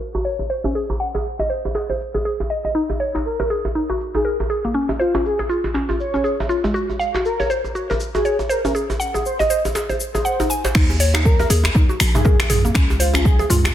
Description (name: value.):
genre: afro house.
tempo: 120 BPM.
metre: 4/4.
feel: swing 59% on 16ths.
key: Eb dorian.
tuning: A4 = 440 Hz.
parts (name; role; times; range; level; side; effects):
deep house drum kit; drums; 0.0-13.7 s; crash cymbal, finger snaps, hi-hat, shaker, toms; -23 LUFS; equal; overdrive.
mallet-like synth pluck; arpeggios; 0.1-13.6 s; Ab3 to Ab5; -22 LUFS; equal; chorus, sidechain pumping, dub echo.
djembe; percussion; 0.1-13.7 s; none; -26 LUFS; right 1 dB; none.
expressive synth lead; melody; 3.3-13.5 s; F4 to Eb5; -24 LUFS; equal; analog chorus, dub echo.
warm 808-style bass; bass; 10.8-13.7 s; Bb1 to Eb2; -19 LUFS; equal; sidechain pumping.
electronic kick drum; drums; 10.8-13.4 s; none; -16 LUFS; equal; overdrive.
room: light reverb, digital ambience.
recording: low-pass filter.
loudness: -17 LUFS.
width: side -11 dB against mid.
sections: 0.0-10.8 A section; 10.8-13.7 B section.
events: filter sweep on synth pluck 0.0-10.8; filter sweep 0.0-10.8; drop 10.8-13.7.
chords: 0.0 Gb5; 0.8 Ab; 2.8 Eb5; 4.8 Db; 6.8 Gb5; 8.8 Ab7; 10.8 Eb5; 12.8 Db.